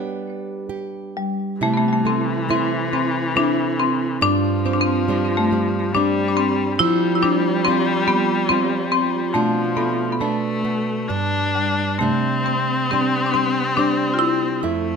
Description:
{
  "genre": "celtic folk, Celtic slow air",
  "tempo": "69 BPM",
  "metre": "3/4",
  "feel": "rubato",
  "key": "C major",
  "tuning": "A4 = 440 Hz",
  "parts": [
    { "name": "marimba with hard mallets", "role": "melody", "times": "0.0-15.0 s", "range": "G3 to D5", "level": "-21 LUFS", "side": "left 3 dB", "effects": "tape echo" },
    { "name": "nylon-string guitar", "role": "accompaniment", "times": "0.0-15.0 s", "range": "F2 to G4", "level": "-23 LUFS", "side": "right 6 dB", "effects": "none" },
    { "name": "clear viola", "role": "second line", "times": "1.6-15.0 s", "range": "E3 to D4", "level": "-23 LUFS", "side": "left 4 dB", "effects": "none" }
  ],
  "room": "light reverb",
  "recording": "none",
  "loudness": "-17 LUFS",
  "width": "side -6 dB against mid",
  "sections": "0.0-1.6 A section; 1.6-15.0 B section",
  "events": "none",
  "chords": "0.0 G; 1.6 C6; 4.2 G7sus4; 6.8 Fsus2; 9.3 Bm7b5; 11.1 N.C.; 12.0 Csus2",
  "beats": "0.71 | 1.62 2.50 3.36 | 4.22 5.08 5.94 | 6.79 7.65 8.49 | 9.34 10.20 11.09 | 12.01 12.90 13.77 | 14.62"
}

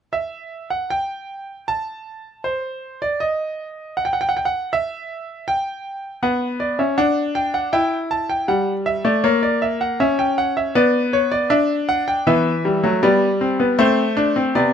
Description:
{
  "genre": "classical, baroque-style 3-part fugue for grand piano",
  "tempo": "79 BPM",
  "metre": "4/4",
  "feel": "straight",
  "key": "E minor",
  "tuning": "A4 = 439 Hz",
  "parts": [
    { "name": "bright grand piano", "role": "solo", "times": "0.1-14.7 s", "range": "C3 to A5", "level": "-18 LUFS", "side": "equal", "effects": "none" }
  ],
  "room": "light reverb",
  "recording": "close, detailed microphones",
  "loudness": "-17 LUFS",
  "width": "side -8 dB against mid",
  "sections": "0.1-14.7 A section",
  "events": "none",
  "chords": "0.1 N.C.; 6.2 Bm; 7.7 Em; 9.2 F#7/A#; 10.8 Bm; 12.3 Em; 13.8 Am",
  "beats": "| 0.12 0.90 1.68 2.44 | 3.21 3.97 4.73 5.48 | 6.23 6.98 7.74 8.49 | 9.24 10.00 10.76 11.51 | 12.27 13.03 13.79 14.55"
}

